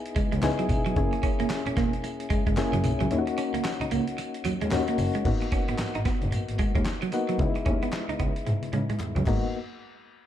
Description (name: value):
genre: R&B, new jack swing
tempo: 112 BPM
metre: 4/4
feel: swing 61% on 16ths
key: G# minor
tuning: A4 = 440 Hz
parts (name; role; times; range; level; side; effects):
- soft electric-piano-like synth keys; accompaniment; 0.0-9.6 s; G#3 to G#4; -30 LUFS; left 4 dB; chorus, tremolo, low-pass filter
- dusty soul sampler-style drum kit; drums; 0.1-9.4 s; crash cymbal, handclaps, hi-hat, kick drum, snare drum, tambourine, toms; -30 LUFS; equal; none
- electric guitar at the edge of break-up; riff; 0.2-9.4 s; F#3 to D#4; -31 LUFS; right 4 dB; wide subtle chorus, low-pass filter
- muted double bass; bass; 0.2-9.3 s; E1 to C#3; -30 LUFS; equal; none
- group handclap; percussion; 0.4-9.5 s; none; -48 LUFS; left 6 dB; none
room: digital ambience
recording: dark, warm production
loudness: -24 LUFS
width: side -11 dB against mid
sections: 0.0-5.3 A section; 5.3-9.5 B section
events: kick muted 3.1-5.3; filter sweep 5.3-9.5; drum fill 8.5-9.5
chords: 0.0 C#m7; 1.0 F#7; 3.1 D#m7; 5.3 G#m7; 7.4 C#m7; 9.3 G#m7; 9.5 N.C.